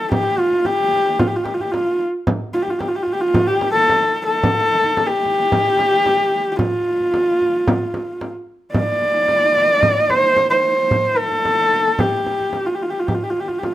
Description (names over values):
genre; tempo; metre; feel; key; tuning
mongolian traditional, Mongolian folk; 111 BPM; 4/4; straight; F gong mode; A4 = 445 Hz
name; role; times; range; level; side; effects
dark horsehead fiddle; melody; 0.0-13.7 s; F4 to D5; -16 LUFS; equal; plate reverb
frame drum; percussion; 0.1-13.7 s; none; -22 LUFS; right 1 dB; none
room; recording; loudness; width
moderate studio reverb, RT60 0.9 s; none; -15 LUFS; side -14 dB against mid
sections
0.0-2.3 A section; 2.3-13.7 B section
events
none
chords
none